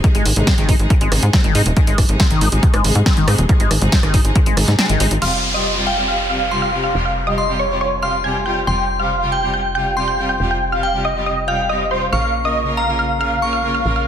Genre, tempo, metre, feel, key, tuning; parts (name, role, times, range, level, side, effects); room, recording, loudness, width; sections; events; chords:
uplifting trance; 139 BPM; 4/4; straight; F minor; A4 = 440 Hz
clear studio string section; sustained chords; 0.0-14.0 s; C3 to Bb4; -23 LUFS; equal; sidechain pumping
liquid acid bass; arpeggios; 0.0-5.1 s; Eb3 to Eb4; -23 LUFS; left 3 dB; phaser, ensemble chorus, sidechain pumping, ping-pong delay
electronic kick drum; drums; 0.0-4.4 s; -15 LUFS; equal
punchy analog drum machine; drums; 0.0-5.3 s; crash cymbal, hi-hat, rim click, snare drum; -20 LUFS; right 1 dB
tight sequencer bass; bass; 0.1-14.1 s; Eb1 to Ab2; -21 LUFS; equal; sidechain pumping
big supersaw lead; melody; 5.2-14.1 s; C5 to Ab5; -21 LUFS; right 1 dB; sidechain pumping, low-pass filter, tape echo
glassy synth bell; second line; 5.2-13.8 s; F5 to Db6; -23 LUFS; left 1 dB; chorus, ping-pong delay
wide unison pluck; second line; 5.2-14.1 s; C6 to Ab6; -27 LUFS; right 1 dB
downlifter; sound effects; 5.2-8.7 s; -23 LUFS; equal
light reverb; dense, heavily limited modern master; -14 LUFS; side -9 dB against mid
0.0-5.2 A section; 5.2-14.1 B section
kick drops out 4.8-5.2; filter sweep on supersaw synth 5.2-14.1
0.0 Ab; 5.2 Fsus2; 12.1 Bbm